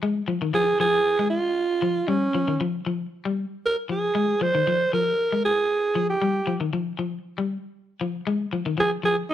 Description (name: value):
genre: afrobeat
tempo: 116 BPM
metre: 4/4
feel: straight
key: F minor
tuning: A4 = 439 Hz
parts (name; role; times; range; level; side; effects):
- electric guitar at the edge of break-up; arpeggios; 0.0-9.2 s; Eb3 to Ab3; -26 LUFS; left 4 dB; none
- breathy alto saxophone; melody; 0.5-9.3 s; Db4 to C5; -21 LUFS; right 2 dB; none
room: moderate large studio reverb, RT60 1.0 s, small room ambience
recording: none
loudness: -22 LUFS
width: side -11 dB against mid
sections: 0.0-9.3 A section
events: none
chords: 0.0 Fm; 2.1 Eb7 (rootless); 4.2 Fm; 6.2 N.C.; 8.3 Fm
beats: | 0.02 0.54 1.06 1.58 | 2.09 2.61 3.12 3.64 | 4.16 4.67 5.19 5.70 | 6.22 6.73 7.25 7.76 | 8.27 8.79 9.30